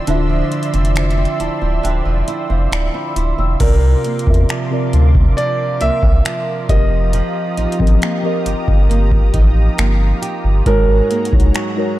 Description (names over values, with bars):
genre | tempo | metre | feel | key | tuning
contemporary R&B | 68 BPM | 4/4 | straight | unclear | A4 = 440 Hz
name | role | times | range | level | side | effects
muted felt-like synth keys | accompaniment | 0.0-12.0 s | C3 to E6 | -22 LUFS | left 1 dB | chorus, phaser
lush unison pad | sustained chords | 0.0-12.0 s | F4 to E6 | -26 LUFS | right 1 dB | chorus, sidechain pumping
flamenco guitar | arpeggios | 0.0-12.0 s | Ab2 to G4 | -24 LUFS | right 5 dB | digital delay
sub bass with octave | bass | 0.1-11.5 s | D1 to E2 | -15 LUFS | equal | none
booming analog drum machine | drums | 0.1-11.8 s | crash cymbal, finger snaps, hi-hat, kick drum | -17 LUFS | equal | none
clear grand piano | melody | 3.6-12.0 s | Bb4 to E5 | -22 LUFS | right 1 dB | none
room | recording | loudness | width
little or no reverb | dark, warm production | -13 LUFS | side -15 dB against mid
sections
0.0-3.6 A section; 3.6-12.0 B section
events
break 0.1-3.6; synth keys fill 1.0-3.6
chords
0.0 Dm9; 3.6 C9sus4; 6.7 F9sus4; 10.7 Ab9sus4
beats
| 0.07 0.96 1.84 2.72 | 3.60 4.49 5.37 6.25 | 7.13 8.02 8.90 9.78 | 10.66 11.55